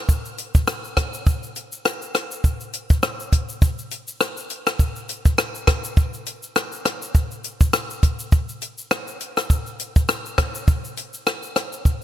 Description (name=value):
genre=dancehall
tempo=102 BPM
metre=4/4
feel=swing 56% on 16ths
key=none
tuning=none
part: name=compact cocktail drum kit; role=drums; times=0.1-12.0 s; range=hi-hat, kick drum, rim click, shaker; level=-19 LUFS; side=equal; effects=none
room=light reverb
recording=bright 1980s-style digital production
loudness=-20 LUFS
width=side -12 dB against mid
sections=0.0-12.0 A section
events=none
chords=none